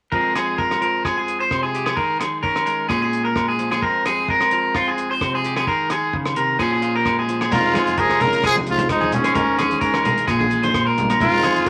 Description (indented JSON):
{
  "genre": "highlife guitar band",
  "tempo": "130 BPM",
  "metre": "4/4",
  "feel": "swing 53% on 16ths",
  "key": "F minor",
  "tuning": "A4 = 442 Hz",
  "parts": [
    { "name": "clean electric guitar", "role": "accompaniment", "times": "0.1-11.7 s", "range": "F2 to Ab4", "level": "-27 LUFS", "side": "equal", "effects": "none" },
    { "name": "electric guitar at the edge of break-up", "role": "arpeggios", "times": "0.1-11.7 s", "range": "F4 to C5", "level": "-23 LUFS", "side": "equal", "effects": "none" },
    { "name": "cloth-damped thuddy drum kit", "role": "drums", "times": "0.1-11.7 s", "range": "crash cymbal, hi-hat, kick drum, rim click", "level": "-31 LUFS", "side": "equal", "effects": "none" },
    { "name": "agogo bells", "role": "percussion", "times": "0.4-11.6 s", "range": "none", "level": "-30 LUFS", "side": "equal", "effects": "none" },
    { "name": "growling trumpet", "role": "melody", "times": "7.5-11.7 s", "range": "Db4 to Bb4", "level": "-21 LUFS", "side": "equal", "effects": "none" },
    { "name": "breathy trombone", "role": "second line", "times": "7.5-11.7 s", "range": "Ab2 to Db3", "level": "-31 LUFS", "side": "equal", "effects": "none" },
    { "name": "upright bass", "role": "bass", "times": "7.5-11.7 s", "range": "F1 to Eb3", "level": "-36 LUFS", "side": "equal", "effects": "none" },
    { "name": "congas", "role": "percussion", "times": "7.5-11.6 s", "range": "none", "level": "-28 LUFS", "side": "equal", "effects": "none" }
  ],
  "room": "moderate studio reverb, RT60 0.8 s",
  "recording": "vinyl crackle",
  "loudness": "-19 LUFS",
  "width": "mono",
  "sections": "0.1-7.5 A section; 7.5-11.7 B section",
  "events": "none",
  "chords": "0.1 Fm; 2.0 Eb7sus4; 2.9 Bbm7; 3.8 Fm; 5.7 Eb7sus4; 6.6 Bbm7; 7.5 Fm; 9.4 Eb7sus4; 10.3 Abmaj9/Bb"
}